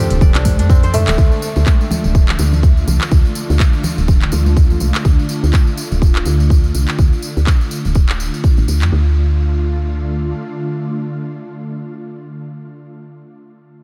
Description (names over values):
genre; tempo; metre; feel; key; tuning
afro house; 124 BPM; 4/4; swing 57% on 16ths; D minor pentatonic; A4 = 440 Hz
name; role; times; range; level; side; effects
ethereal airy pad; sustained chords; 0.1-12.5 s; D3 to A4; -26 LUFS; equal; ensemble chorus, built-in reverb, sidechain pumping
kora; arpeggios; 0.0-2.9 s; A3 to D5; -27 LUFS; equal; sidechain pumping, analog delay
woody FM bass; bass; 0.1-10.3 s; D1 to F2; -17 LUFS; equal; sidechain pumping
house drum kit; drums; 0.1-8.9 s; handclaps, hi-hat, toms; -27 LUFS; equal; none
tambourine; percussion; 0.1-8.9 s; none; -33 LUFS; equal; none
electronic kick drum; drums; 0.2-8.5 s; none; -14 LUFS; equal; none
congas; percussion; 0.2-4.9 s; none; -26 LUFS; equal; none
room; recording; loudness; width
light reverb, studio reverb; none; -15 LUFS; mono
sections
0.0-1.2 A section; 1.2-8.9 B section; 8.9-12.8 C section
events
drop 0.0-1.2; filter sweep on FM bass 1.2-8.9; filter sweep on ambient pad 1.2-8.9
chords
0.0 Dm7; 8.9 Dm